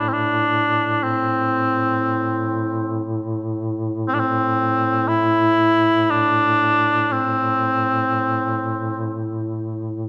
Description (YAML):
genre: caucasian folk, Caucasian lament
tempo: free time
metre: none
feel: none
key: A minor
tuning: A4 = 442 Hz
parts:
  - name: warm cor anglais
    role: melody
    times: 0.0-9.2 s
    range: C4 to E4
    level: -21 LUFS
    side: equal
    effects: none
  - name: mellow duduk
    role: drone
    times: 0.0-10.1 s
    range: A2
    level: -26 LUFS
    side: equal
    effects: none
room: moderate concert hall reverb, RT60 2.4 s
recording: dark, warm production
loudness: -20 LUFS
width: mono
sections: 0.0-10.1 A section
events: none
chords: none